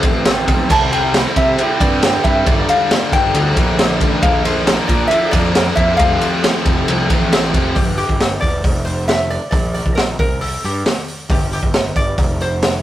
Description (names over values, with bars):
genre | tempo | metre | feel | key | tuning
quiet-loud alternative rock | 136 BPM | 4/4 | straight | G dorian | A4 = 440 Hz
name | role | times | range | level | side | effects
metal-body resonator slide guitar | melody | 0.0-12.8 s | G4 to A5 | -20 LUFS | equal | none
distorted electric guitar | riff | 0.0-7.8 s | F2 to E4 | -23 LUFS | right 6 dB | distortion
thick fuzz guitar | riff | 0.0-7.8 s | F2 to E4 | -24 LUFS | left 3 dB | distortion
fuzz picked electric bass | bass | 0.0-12.8 s | E1 to C3 | -21 LUFS | equal | overdrive
raw garage drum kit | drums | 0.0-12.7 s | crash cymbal, hi-hat, kick drum, ride cymbal, snare drum | -16 LUFS | equal | none
high-gain distorted guitar | riff | 0.7-7.8 s | F2 to C4 | -24 LUFS | equal | distortion
room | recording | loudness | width
light reverb | rough rehearsal-room recording, warm saturation | -13 LUFS | side -13 dB against mid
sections
0.0-7.8 A section; 7.8-12.8 B section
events
none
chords
0.0 F; 0.7 C; 2.5 Gm; 4.2 Bb; 6.0 F; 7.8 Em7; 8.6 Dm9/F; 9.5 Bb; 10.2 C5; 11.3 G5; 12.2 F5